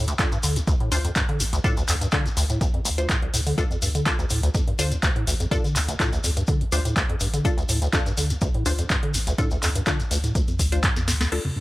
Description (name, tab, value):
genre	acid house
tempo	124 BPM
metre	4/4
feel	swing 53% on 16ths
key	D minor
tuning	A4 = 440 Hz
part	deep acid bass	riff	0.0-11.6 s	C2 to D3	-26 LUFS	equal	lush chorus
part	warm sub bass	bass	0.0-11.3 s	A1 to D2	-26 LUFS	equal	sidechain pumping
part	booming analog drum machine	drums	0.1-11.5 s	crash cymbal, handclaps, hi-hat, snare drum, toms	-27 LUFS	equal	none
part	shekere	percussion	0.1-11.3 s	none	-31 LUFS	left 2 dB	none
part	filtered dub chord stab	stabs	0.2-11.4 s	D4 to C5	-32 LUFS	left 2 dB	phaser, vintage 12-bit sampler grit, dub echo
part	electronic kick drum	drums	0.2-10.9 s	none	-24 LUFS	equal	none
room	little or no reverb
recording	none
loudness	-20 LUFS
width	side -18 dB against mid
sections	0.0-11.3 A section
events	drum fill 11.0-11.3; band accent 11.2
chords	0.0 Dm